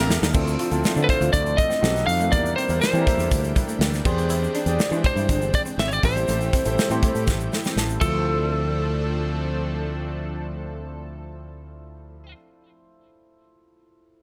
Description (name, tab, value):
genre	polished 1980s jazz-funk pop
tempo	121 BPM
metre	4/4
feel	straight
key	D minor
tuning	A4 = 441 Hz
part	lightly driven lead guitar	melody	0.0-12.3 s	A4 to F5	-28 LUFS	equal	none
part	clear concert grand piano	accompaniment	0.0-14.2 s	Bb3 to A5	-32 LUFS	equal	subtle chorus
part	lush unison pad	sustained chords	0.0-12.3 s	D3 to D6	-34 LUFS	equal	chorus
part	fretless electric bass	bass	0.0-12.3 s	G1 to E3	-28 LUFS	equal	none
part	clean electric guitar	riff	0.1-8.3 s	F3 to F4	-35 LUFS	equal	lush chorus
part	modern studio drum kit	drums	0.1-8.1 s	crash cymbal, hi-hat, kick drum, snare drum	-26 LUFS	equal	none
part	tube shaker	percussion	0.1-8.5 s	none	-43 LUFS	equal	none
room	light reverb, small room ambience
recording	none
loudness	-22 LUFS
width	mono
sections	0.3-8.3 A section; 8.3-12.2 B section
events	drum fill 0.0-0.3, 7.3-8.3; grand piano fill 7.5-8.3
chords	0.3 Dm7; 1.8 B7b13; 2.3 Em7b5; 4.1 E7alt; 6.0 Am7; 8.0 Dm7